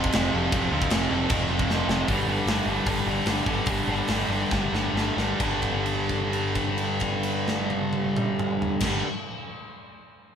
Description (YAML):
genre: punk rock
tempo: 130-155 BPM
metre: 4/4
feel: straight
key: unclear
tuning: A4 = 440 Hz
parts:
  - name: sludgy distorted guitar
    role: riff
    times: 0.0-9.0 s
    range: F2 to G3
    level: -25 LUFS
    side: equal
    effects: overdrive
  - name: growling picked electric bass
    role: bass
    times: 0.0-9.0 s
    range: F1 to D2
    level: -30 LUFS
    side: equal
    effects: overdrive
  - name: tight metal drum kit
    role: drums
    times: 0.0-8.9 s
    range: crash cymbal, hi-hat, kick drum, snare drum, toms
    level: -29 LUFS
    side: equal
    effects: none
room: light reverb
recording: band playing live in one room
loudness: -23 LUFS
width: side -8 dB against mid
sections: 0.0-2.1 A section; 2.1-5.4 B section; 5.4-9.1 C section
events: drum fill 1.7-2.1, 4.5-5.4; slowing down 2.1-5.4; held note 5.4-8.8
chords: 0.0 F5; 2.1 G5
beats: 0.14 | 0.53 0.91 1.30 1.69 | 2.08 2.47 2.86 3.26 | 3.67 4.08 4.51 4.95 | 5.40 5.86 6.32 6.79 | 7.25 7.71 8.17 8.63